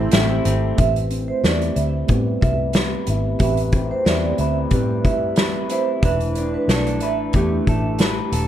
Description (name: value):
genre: indie pop, bedroom pop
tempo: 92 BPM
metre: 4/4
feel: swing 55% on 16ths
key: A minor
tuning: A4 = 438 Hz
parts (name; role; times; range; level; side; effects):
- electric guitar through a small old amp; accompaniment; 0.0-8.5 s; A2 to B4; -26 LUFS; left 4 dB; lush chorus, warbly pitch drift, low-pass filter
- warbly lo-fi synth keys; accompaniment; 0.0-8.5 s; A3 to C5; -25 LUFS; right 4 dB; chorus, cassette tape, low-pass filter
- phased analog pad; sustained chords; 0.0-0.8 s; A4 to C6; -39 LUFS; left 1 dB; none
- vintage muted fingered electric bass; bass; 0.0-8.5 s; D#1 to A2; -22 LUFS; left 1 dB; none
- loose indie drum kit; drums; 0.1-8.5 s; hi-hat, kick drum, snare drum; -20 LUFS; equal; none
- vibraphone with medium mallets; second line; 0.8-7.8 s; B4 to E5; -26 LUFS; right 5 dB; lush chorus, analog delay
room: light reverb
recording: none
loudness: -17 LUFS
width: side -11 dB against mid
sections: 0.8-8.5 A section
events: filter sweep 0.8-8.5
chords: 0.0 Am7; 0.8 Am9; 6.0 E7sus4